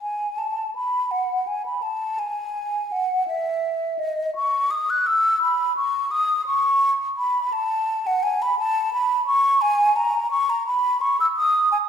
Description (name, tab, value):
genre	classical, baroque-style fantasia for unaccompanied flute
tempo	56 BPM (dotted quarters)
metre	6/8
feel	rubato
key	unclear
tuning	A4 = 440 Hz
part	mellow hollow concert flute	solo	0.0-11.8 s	D#5 to F#6	-20 LUFS	equal	none
room	wet recital hall reverb, RT60 1.8 s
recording	recorded in a church or concert hall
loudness	-20 LUFS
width	side -8 dB against mid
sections	0.0-11.9 A section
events	none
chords	none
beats	| 0.01 1.11 | 2.19 3.28 | 4.35 5.42 | 6.47 7.53 | 8.58 9.62 | 10.67 11.72